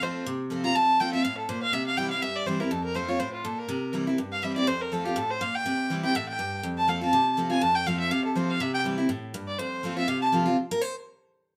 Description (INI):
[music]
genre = bluegrass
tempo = 244 BPM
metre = 4/4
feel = swing 56% on 8ths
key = F major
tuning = A4 = 440 Hz
[part]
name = rich fiddle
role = melody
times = 0.0-10.3 s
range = F4 to Bb5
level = -29 LUFS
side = equal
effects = none
[part]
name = picked steel-string acoustic guitar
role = accompaniment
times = 0.0-10.9 s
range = F2 to C5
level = -30 LUFS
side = equal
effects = none
[sound]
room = moderate studio reverb, RT60 0.8 s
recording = none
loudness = -27 LUFS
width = mono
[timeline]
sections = 0.0-10.6 A section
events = none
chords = 0.0 F; 1.7 C; 2.7 F; 3.7 C; 4.7 F; 5.7 C; 6.6 F; 8.6 C; 9.6 F; 10.6 N.C.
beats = 0.01 0.26 0.50 | 0.75 0.99 1.24 1.48 | 1.73 1.98 2.22 2.47 | 2.71 2.96 3.20 3.45 | 3.69 3.94 4.18 4.43 | 4.67 4.92 5.16 5.41 | 5.65 5.90 6.14 6.39 | 6.63 6.88 7.12 7.37 | 7.62 7.86 8.11 8.35 | 8.60 8.85 9.09 9.34 | 9.58 9.83 10.07 10.32 | 10.57 10.81